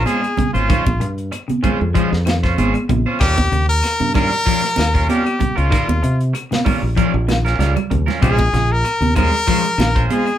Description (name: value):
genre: afrobeat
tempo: 96 BPM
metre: 4/4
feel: swing 54% on 16ths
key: Bb dorian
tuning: A4 = 435 Hz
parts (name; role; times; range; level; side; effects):
- brilliant trumpet; melody; 0.0-10.4 s; F4 to Bb4; -19 LUFS; left 2 dB; none
- electric guitar at the edge of break-up; stabs; 0.0-10.3 s; G3 to C5; -23 LUFS; right 4 dB; none
- fingered electric bass; bass; 0.0-10.1 s; Ab1 to C3; -19 LUFS; equal; none
- tight funk drum kit; drums; 0.1-10.4 s; hi-hat, kick drum, snare drum; -20 LUFS; equal; none
- congas; percussion; 0.1-10.3 s; none; -22 LUFS; right 3 dB; none
- claves; percussion; 0.2-10.4 s; none; -34 LUFS; left 8 dB; none
- semi-hollow electric guitar; arpeggios; 0.4-10.0 s; C3 to F3; -24 LUFS; left 3 dB; none
room: moderate small room ambience, RT60 0.5 s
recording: band playing live in one room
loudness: -14 LUFS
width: side -11 dB against mid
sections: 0.0-10.4 A section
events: drum fill 7.3-8.2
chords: 0.0 Bbm9 (rootless); 3.2 Eb9; 8.2 Bbm9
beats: 0.07 | 0.69 1.32 1.95 2.58 | 3.21 3.83 4.46 5.09 | 5.71 6.34 6.97 7.59 | 8.22 8.85 9.47 10.10